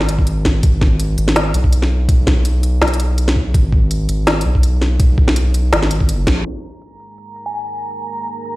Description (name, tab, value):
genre	half-time drum and bass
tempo	165 BPM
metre	4/4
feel	swing 55% on 16ths, half-time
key	G# minor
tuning	A4 = 440 Hz
part	saturated sub bass	bass	0.0-6.4 s	G#1 to B1	-16 LUFS	equal	none
part	organic electronic drum kit	drums	0.0-8.5 s	hi-hat, snare drum	-19 LUFS	equal	overdrive
part	electronic kick drum	drums	0.2-6.3 s	none	-14 LUFS	equal	none
part	dark analog pad	sustained chords	6.4-8.6 s	G#3 to G#5	-34 LUFS	right 3 dB	chorus, sidechain pumping
part	backwards swelling texture	texture	7.0-8.6 s	A#5	-29 LUFS	right 2 dB	built-in reverb
part	glassy synth bell	melody	7.5-8.0 s	G#5	-26 LUFS	left 1 dB	chorus, vintage 12-bit sampler grit, digital delay
room	light reverb, digital ambience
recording	played on a big sound system in a bare room, stone room reverb, low-pass filter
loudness	-13 LUFS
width	side -19 dB against mid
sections	0.0-6.5 A section; 6.5-8.6 B section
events	band accent 6.3; filter sweep on analog synth pad 6.5-8.6; filter sweep 6.5-8.6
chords	0.0 G#m; 6.5 G#5